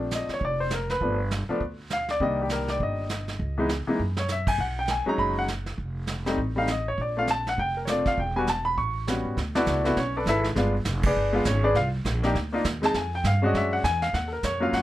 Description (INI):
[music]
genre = jazz piano trio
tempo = 201 BPM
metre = 4/4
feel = swing 60% on 8ths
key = unclear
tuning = A4 = 440 Hz
[part]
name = clear baby grand piano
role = melody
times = 0.0-14.8 s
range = Eb3 to C#6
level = -25 LUFS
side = left 1 dB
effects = none
[part]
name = upright bass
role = bass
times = 0.0-14.8 s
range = E1 to A2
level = -29 LUFS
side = right 1 dB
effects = none
[part]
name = vintage brush drum kit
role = drums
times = 0.1-14.8 s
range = brushed snare drum, crash cymbal, hi-hat, kick drum, snare drum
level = -31 LUFS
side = right 2 dB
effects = none
[sound]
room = light reverb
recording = none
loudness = -23 LUFS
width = side -14 dB against mid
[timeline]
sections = 0.0-9.4 A section; 9.4-14.8 B section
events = drum fill 4.0; band accent 11.0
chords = 0.0 Bbmaj7; 1.0 G7; 2.2 Cm7; 3.4 Dbm; 4.0 Dbmadd11/Gb (rootless); 4.6 B6; 5.8 F7; 7.0 Bbmaj7; 8.2 Em; 8.8 A13; 9.4 D69; 10.6 G7b9; 11.8 Cm9; 12.9 Fm; 13.5 E13; 14.1 Ebm9